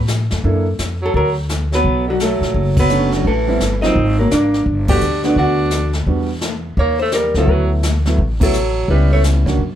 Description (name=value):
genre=jazz, small-group swing and bop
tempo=170 BPM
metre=4/4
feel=swing 64% on 8ths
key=D major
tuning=A4 = 442 Hz
part: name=upright bass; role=bass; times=0.0-9.8 s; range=F#1 to A2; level=-18 LUFS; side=equal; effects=none
part: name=jazz brush drum kit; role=drums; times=0.1-9.8 s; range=brushed snare drum, hi-hat, kick drum, ride cymbal, snare drum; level=-22 LUFS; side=left 1 dB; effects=none
part: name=warm grand piano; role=accompaniment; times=0.4-0.6, 2.9-9.6 s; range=F#3 to A4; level=-21 LUFS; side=right 3 dB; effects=none
part: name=clear tenor saxophone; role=second line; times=1.0-9.2 s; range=D3 to D4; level=-22 LUFS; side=right 3 dB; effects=none
part: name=vintage hollow-body jazz guitar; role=melody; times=1.1-9.2 s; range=F#3 to G5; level=-18 LUFS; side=equal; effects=none
room=light reverb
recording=none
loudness=-14 LUFS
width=side -10 dB against mid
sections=0.0-9.8 A section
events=band accent 2.7, 4.8, 8.4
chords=0.4 F#7alt; 1.8 Bm7; 3.3 Am7; 4.0 G#sus2; 4.7 Gmaj7; 6.1 Em7; 6.8 Eb7#11; 7.5 D69; 8.9 C#m7b5